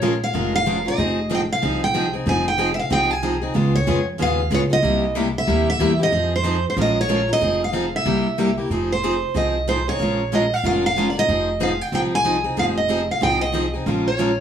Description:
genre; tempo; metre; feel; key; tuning
acoustic string swing (jazz manouche); 186 BPM; 4/4; swing 60% on 8ths; F minor; A4 = 440 Hz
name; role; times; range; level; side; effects
picked steel-string acoustic guitar; melody; 0.0-14.4 s; C5 to Ab5; -21 LUFS; right 1 dB; plate reverb
picked plugged-in steel-string acoustic guitar; accompaniment; 0.0-14.3 s; C3 to Bb4; -24 LUFS; left 4 dB; none
picked steel-string acoustic guitar; accompaniment; 0.0-14.3 s; C3 to Bb4; -26 LUFS; right 6 dB; none
upright bass; bass; 0.0-14.4 s; F1 to F2; -25 LUFS; right 1 dB; none
room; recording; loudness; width
moderate studio reverb, RT60 0.7 s; small room ambience; -18 LUFS; side -9 dB against mid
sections
0.0-8.7 A section; 8.7-14.4 A section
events
none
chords
0.0 Bbm7; 1.0 Fm9; 3.6 Db7; 4.8 C7#9; 6.1 Fm7; 6.8 Bbm7; 7.4 Fm7; 8.1 C7; 8.7 Fm7; 10.0 Bbm7; 11.3 Fm7; 13.9 Bbm7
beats
0.02 0.34 0.66 | 0.98 1.31 1.63 1.95 | 2.27 2.59 2.91 3.23 | 3.56 3.88 4.20 4.52 | 4.84 5.17 5.49 5.81 | 6.13 6.45 6.78 7.10 | 7.42 7.74 8.06 8.38 | 8.71 9.03 9.35 9.68 | 10.00 10.32 10.64 10.96 | 11.29 11.61 11.93 12.25 | 12.58 12.90 13.22 13.54 | 13.87 14.19

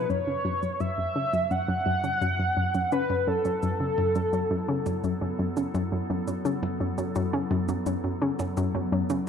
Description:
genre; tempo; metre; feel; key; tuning
ambient, sequencer-driven space music; 85 BPM; 4/4; straight; F# minor; A4 = 442 Hz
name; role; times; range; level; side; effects
pulse-width lead; melody; 0.0-5.4 s; A4 to F#5; -27 LUFS; equal; chorus, analog delay
evolving wavetable pad; sustained chords; 0.0-9.3 s; F#3 to Db5; -34 LUFS; left 1 dB; chorus, built-in reverb
analog pluck; riff; 0.0-9.2 s; F#2 to C#3; -27 LUFS; equal; chorus, analog delay
shaker and percussion blips; percussion; 0.1-9.2 s; none; -46 LUFS; right 2 dB; analog delay
room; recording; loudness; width
wet concert hall reverb, RT60 1.9 s, digital ambience; dark, warm production; -25 LUFS; side -7 dB against mid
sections
0.1-9.3 A section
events
fade-in on ambient pad 0.1-9.3; fade-in on drum 0.1-9.3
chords
0.1 F#m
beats
| 0.10 0.80 1.51 2.22 | 2.92 3.63 4.33 5.04 | 5.75 6.45 7.16 7.86 | 8.57 9.28

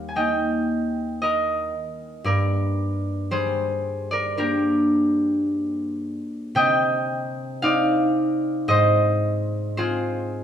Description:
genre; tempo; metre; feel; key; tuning
classical, solo harp piece; 51-58 BPM; 4/4; rubato; unclear; A4 = 444 Hz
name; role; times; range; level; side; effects
concert harp; solo; 0.0-10.4 s; Eb2 to Ab5; -20 LUFS; equal; none
room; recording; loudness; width
wet recital hall reverb, RT60 1.3 s; none; -20 LUFS; side -9 dB against mid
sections
0.0-10.4 A section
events
none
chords
0.0 Eb; 2.3 Gm; 6.6 Cm; 8.7 Fm7/Ab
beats
0.14 1.22 | 2.26 3.31 4.37 5.43 | 6.56 7.62 8.68 9.78

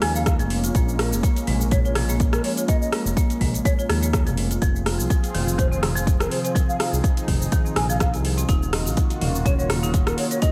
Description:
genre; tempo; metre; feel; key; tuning
afro house; 124 BPM; 4/4; swing 55% on 16ths; Bb minor; A4 = 441 Hz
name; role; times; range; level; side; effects
bass bansuri; melody; 0.0-10.5 s; Bb4 to Ab5; -32 LUFS; equal; delay
warm analog pad; sustained chords; 0.0-10.5 s; Eb3 to Ab4; -34 LUFS; equal; chorus, sidechain pumping
marimba with hard mallets; arpeggios; 0.0-10.5 s; C3 to Eb5; -31 LUFS; equal; sidechain pumping, delay
smooth synth bass; bass; 0.0-10.1 s; Eb1 to Eb2; -27 LUFS; equal; sidechain pumping
deep house drum kit; drums; 0.0-10.5 s; hi-hat, rim click, shaker, toms; -30 LUFS; equal; overdrive
electronic kick drum; drums; 0.3-10.5 s; none; -23 LUFS; equal; overdrive
room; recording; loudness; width
light reverb; none; -22 LUFS; mono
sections
0.0-10.5 A section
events
none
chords
0.0 Bbm7; 4.6 Fm7; 8.5 Ebm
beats
0.26 | 0.75 1.23 1.72 2.20 | 2.68 3.17 3.65 4.13 | 4.62 5.10 5.59 6.07 | 6.55 7.04 7.52 8.01 | 8.49 8.97 9.46 9.94 | 10.43

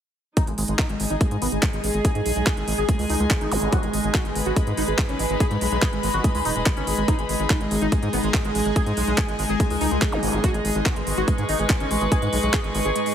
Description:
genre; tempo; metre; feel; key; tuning
psychedelic trance; 143 BPM; 4/4; straight; G# minor; A4 = 440 Hz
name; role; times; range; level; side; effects
wide unison lead; melody; 0.4-13.1 s; G#3 to G#4; -27 LUFS; right 1 dB; phaser, sidechain pumping, dub echo
evolving wavetable pad; sustained chords; 1.1-13.1 s; G#3 to B4; -28 LUFS; right 1 dB; phaser, built-in reverb, sidechain pumping
electronic kick drum; drums; 0.4-12.6 s; none; -23 LUFS; equal; none
garage drum kit; drums; 0.4-13.1 s; handclaps, hi-hat; -28 LUFS; right 1 dB; none
warm studio string section; texture; 0.4-13.1 s; D#4 to C#6; -30 LUFS; left 3 dB; sidechain pumping
round analog bass; bass; 0.5-12.9 s; D#1 to G#2; -27 LUFS; equal; none
zap; sound effects; 3.5-3.6, 10.1-10.2 s; none; -29 LUFS; equal; none
room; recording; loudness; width
light reverb; heavily compressed radio sound, multiband compression; -20 LUFS; side -9 dB against mid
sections
0.4-13.1 A section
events
kick drops out 13.0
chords
0.4 G#5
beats
| 0.37 0.79 1.21 1.63 | 2.05 2.47 2.89 3.31 | 3.73 4.14 4.56 4.98 | 5.40 5.82 6.24 6.66 | 7.08 7.50 7.92 8.34 | 8.76 9.18 9.60 10.02 | 10.44 10.86 11.28 11.70 | 12.12 12.54 12.96

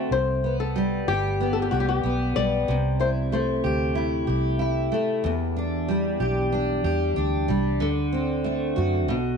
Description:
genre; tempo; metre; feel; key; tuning
pop; 94 BPM; 4/4; straight; E minor; A4 = 440 Hz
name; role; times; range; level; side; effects
fingerpicked steel-string acoustic guitar; accompaniment; 0.0-9.4 s; E2 to G4; -24 LUFS; equal; double-tracked left and right
flamenco guitar; melody; 0.1-3.9 s; F#4 to D5; -27 LUFS; left 8 dB; none
vintage muted fingered electric bass; bass; 0.1-9.4 s; G1 to F#2; -27 LUFS; right 1 dB; none
room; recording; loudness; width
moderate echo chamber reverb, RT60 1.5 s, studio ambience; none; -22 LUFS; side -6 dB against mid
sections
0.0-9.4 A section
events
none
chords
0.1 C5; 2.7 Am7/C; 5.2 Em7; 7.8 D7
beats
| 0.12 0.76 1.40 2.04 | 2.68 3.33 3.97 4.61 | 5.25 5.89 6.53 7.17 | 7.81 8.45 9.09

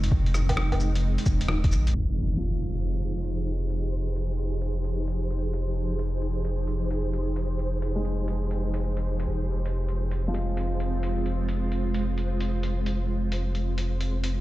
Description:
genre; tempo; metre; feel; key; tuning
future garage; 131 BPM; 4/4; swing 66% on 16ths; F minor; A4 = 440 Hz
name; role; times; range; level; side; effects
felt-muted upright piano; accompaniment; 0.0-14.4 s; Eb3 to Ab3; -37 LUFS; equal; sidechain pumping, tape echo
granular cloud pad; sustained chords; 0.0-14.4 s; F3 to Ab4; -33 LUFS; right 2 dB; built-in reverb, vintage 12-bit sampler grit, sidechain pumping
warm sub bass; bass; 0.0-14.4 s; Eb1 to Bb1; -27 LUFS; equal; tube saturation, sidechain pumping
lo-fi sampler-style drum kit; drums; 0.0-14.3 s; cabasa, hi-hat, rim click, woodblock; -35 LUFS; equal; none
electronic kick drum; drums; 0.1-1.7 s; none; -25 LUFS; equal; overdrive
impact; sound effects; 1.9-3.8 s; none; -32 LUFS; equal; none
flickering grainy texture; texture; 2.8-14.4 s; C5; -41 LUFS; equal; built-in reverb
room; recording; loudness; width
little or no reverb; played on a big sound system in a bare room, large studio reverb, low-pass filter; -25 LUFS; side -16 dB against mid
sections
0.0-1.9 A section; 1.9-14.4 B section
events
band accent 1.5; impact 1.9-3.8; filter sweep 1.9-14.4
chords
0.0 Ab6/F; 1.9 Fm9; 9.3 Ab6/F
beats
| 0.12 0.57 1.03 1.49 | 1.95 2.41 2.87 3.32 | 3.78 4.24 4.70 5.16 | 5.61 6.07 6.53 6.99 | 7.45 7.90 8.36 8.82 | 9.28 9.73 10.19 10.65 | 11.11 11.57 12.03 12.48 | 12.94 13.40 13.86 14.31

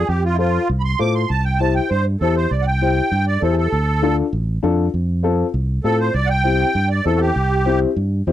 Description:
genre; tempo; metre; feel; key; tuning
latin, cumbia; 198 BPM; 4/4; straight; unclear; A4 = 440 Hz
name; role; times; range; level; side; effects
musette accordion; melody; 0.0-7.8 s; E4 to D6; -21 LUFS; right 3 dB; none
fingered electric bass; bass; 0.0-8.3 s; A1 to A2; -19 LUFS; right 1 dB; none
dark upright piano; accompaniment; 0.4-8.3 s; C4 to C5; -20 LUFS; left 6 dB; none
room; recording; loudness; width
little or no reverb; dry, close 1970s-style studio recording; -16 LUFS; side -12 dB against mid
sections
0.0-8.3 A section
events
accordion solo 0.0-8.3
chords
0.1 F; 1.3 C; 3.7 Dm; 4.9 F; 6.2 C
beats
| 0.09 0.39 0.70 1.00 | 1.30 1.61 1.91 2.21 | 2.52 2.82 3.12 3.42 | 3.73 4.03 4.33 4.64 | 4.94 5.24 5.54 5.85 | 6.15 6.45 6.76 7.06 | 7.36 7.67 7.97 8.27

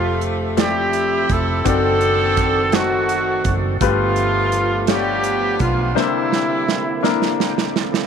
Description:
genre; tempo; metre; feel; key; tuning
slow gospel; 56 BPM (dotted quarters); 6/8; straight; F major; A4 = 443 Hz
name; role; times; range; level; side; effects
clear saxophone section; melody; 0.0-7.4 s; G3 to A4; -22 LUFS; left 2 dB; none
growling trumpet; melody; 0.0-7.4 s; E4 to A4; -22 LUFS; right 4 dB; tape echo
bright grand piano; accompaniment; 0.0-8.1 s; G2 to E5; -22 LUFS; left 11 dB; none
tonewheel organ; sustained chords; 0.0-8.1 s; D3 to G5; -28 LUFS; right 13 dB; slow rotary speaker, overdrive, chorus vibrato
hollow-body short-scale fingered electric bass; bass; 0.0-5.9 s; F1 to B1; -24 LUFS; right 1 dB; none
modern studio drum kit; drums; 0.2-8.1 s; hi-hat, kick drum, snare drum; -22 LUFS; right 6 dB; none
room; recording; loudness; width
moderate spring reverb, RT60 2.6 s; 1960s-style stereo with parts hard left and right; -16 LUFS; side -7 dB against mid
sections
0.0-8.1 A section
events
drum fill 6.0-8.1; tonewheel organ fill 7.0-8.1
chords
0.0 Fmaj9; 1.7 D7b9/F#; 3.8 G9; 6.0 C9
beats
0.58 | 1.66 2.73 | 3.81 4.88 | 5.96 7.04

